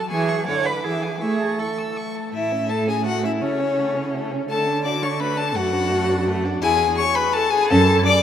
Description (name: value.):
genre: quick classical-period movement for string quartet.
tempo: 167 BPM.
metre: 3/4.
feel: straight.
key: A major.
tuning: A4 = 441 Hz.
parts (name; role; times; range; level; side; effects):
rich violin; melody; 0.0-8.2 s; C#5 to D6; -23 LUFS; left 6 dB; none.
rich violin; second line; 0.0-7.9 s; A3 to E6; -29 LUFS; left 1 dB; none.
clear viola; accompaniment; 0.1-8.2 s; D3 to D5; -23 LUFS; equal; none.
rich cello; bass; 0.1-8.0 s; E2 to C#5; -24 LUFS; right 4 dB; none.
room: wet cathedral reverb, RT60 6.6 s.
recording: in a vast, echoing space.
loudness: -19 LUFS.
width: side -9 dB against mid.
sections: 0.0-2.3 A section; 2.3-8.2 B section.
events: none.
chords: 0.1 C#m/E; 0.5 Bm/D; 0.8 E7; 1.2 A; 3.4 A/C#; 4.5 D5; 5.6 D/F#; 6.6 E; 7.7 F#m.